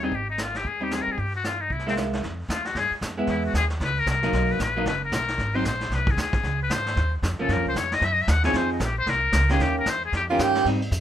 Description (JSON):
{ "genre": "jazz, small-group swing and bop", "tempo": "228 BPM", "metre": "4/4", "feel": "swing 61% on 8ths", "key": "Ab major", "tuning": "A4 = 439 Hz", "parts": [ { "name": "trumpet with metal mute", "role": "melody", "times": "0.0-10.2 s", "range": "C4 to Gb5", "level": "-26 LUFS", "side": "left 4 dB", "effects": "none" }, { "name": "vintage hollow-body jazz guitar", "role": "accompaniment", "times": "0.0-10.8 s", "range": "Eb3 to Ab4", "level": "-26 LUFS", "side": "right 1 dB", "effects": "none" }, { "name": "upright bass", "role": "bass", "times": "0.0-11.0 s", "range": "F#1 to Ab2", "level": "-27 LUFS", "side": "equal", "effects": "none" }, { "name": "vintage brush drum kit", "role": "drums", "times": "0.1-11.0 s", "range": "brushed snare drum, hi-hat, kick drum, ride cymbal, snare drum", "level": "-30 LUFS", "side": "equal", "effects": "none" }, { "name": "breathy tenor saxophone", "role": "second line", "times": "10.3-10.7 s", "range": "F4 to G4", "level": "-22 LUFS", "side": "right 4 dB", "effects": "none" } ], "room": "light reverb", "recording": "minimal, uncompressed stereo recording", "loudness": "-22 LUFS", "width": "side -10 dB against mid", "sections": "0.0-2.2 A section; 2.2-10.7 B section", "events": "none", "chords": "0.1 Abmaj7; 1.2 Ebadd9/G (rootless); 1.7 C7b13; 2.2 F7sus2; 3.3 Emaj7; 3.8 Gb; 4.3 Bmaj7; 5.4 Ab; 6.4 Dbmaj9; 7.5 Gm7b5 (rootless); 8.0 Gbsus2; 8.5 Fm7; 9.6 Eb7", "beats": "| 0.12 0.39 0.65 0.91 | 1.18 1.44 1.70 1.97 | 2.23 2.49 2.75 3.02 | 3.28 3.54 3.81 4.07 | 4.33 4.59 4.86 5.12 | 5.38 5.65 5.91 6.17 | 6.44 6.70 6.96 7.23 | 7.49 7.76 8.02 8.28 | 8.55 8.81 9.07 9.34 | 9.60 9.87 10.13 10.39 | 10.66 10.92" }